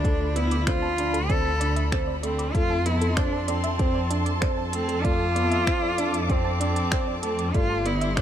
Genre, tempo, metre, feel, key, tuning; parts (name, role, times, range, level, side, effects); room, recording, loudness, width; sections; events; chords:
piano and strings electronica; 96 BPM; 4/4; straight; A4 = 440 Hz
rich cello; melody; 0.0-8.2 s; C4 to A4; -28 LUFS; equal; digital delay
muted studio string section; sustained chords; 0.0-8.2 s; F3 to D6; -33 LUFS; left 1 dB; sidechain pumping
soft round pluck; arpeggios; 0.0-8.2 s; D4 to D6; -35 LUFS; right 4 dB; chorus, sidechain pumping, digital delay
felt-muted upright piano; riff; 0.0-8.2 s; A3 to D4; -30 LUFS; right 2 dB; digital delay
dark detuned saw bass; bass; 0.0-8.2 s; G1 to F2; -28 LUFS; equal; sidechain pumping
electronic kick drum; drums; 0.0-8.2 s; -26 LUFS; equal; overdrive, small room ambience
organic electronic drum kit; drums; 0.0-8.2 s; finger snaps, hi-hat; -32 LUFS; equal; small room ambience
light reverb, small room ambience; -22 LUFS; side -10 dB against mid
0.0-8.2 A section
0.0 Dm7; 2.5 F; 7.5 Gsus4